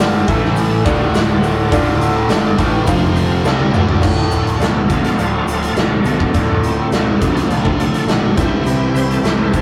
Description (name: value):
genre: classic rock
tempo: 104 BPM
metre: 4/4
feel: straight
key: D minor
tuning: A4 = 442 Hz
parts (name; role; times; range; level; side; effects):
- clear upright piano; accompaniment; 0.0-9.6 s; E4 to A5; -28 LUFS; equal; none
- bright tonewheel organ; sustained chords; 0.0-9.6 s; E3 to F5; -26 LUFS; equal; slow rotary speaker, chorus vibrato
- biting overdriven guitar; riff; 0.0-4.0 s; D2 to C4; -25 LUFS; equal; none
- overdriven electric guitar; riff; 0.0-9.6 s; D2 to C4; -25 LUFS; equal; phaser
- sludgy distorted guitar; riff; 0.0-9.6 s; D2 to C4; -23 LUFS; equal; overdrive
- growling picked electric bass; bass; 0.0-9.6 s; D1 to C2; -26 LUFS; equal; overdrive
- big rock drum kit; drums; 0.0-9.6 s; crash cymbal, hi-hat, kick drum, snare drum, toms; -19 LUFS; equal; none
- tube shaker; percussion; 0.6-9.6 s; none; -42 LUFS; equal; none
- picked steel-string acoustic guitar; accompaniment; 4.0-9.6 s; C3 to F4; -28 LUFS; equal; none
room: wet booth ambience, RT60 0.2 s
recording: rough rehearsal-room recording, warm saturation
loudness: -15 LUFS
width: mono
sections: 0.0-4.0 A section; 4.0-9.6 B section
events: upright piano fill 3.2-4.0; drum fill 3.5-4.0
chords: 0.3 A5; 0.8 Dm; 2.9 F5; 3.5 Dm; 8.4 C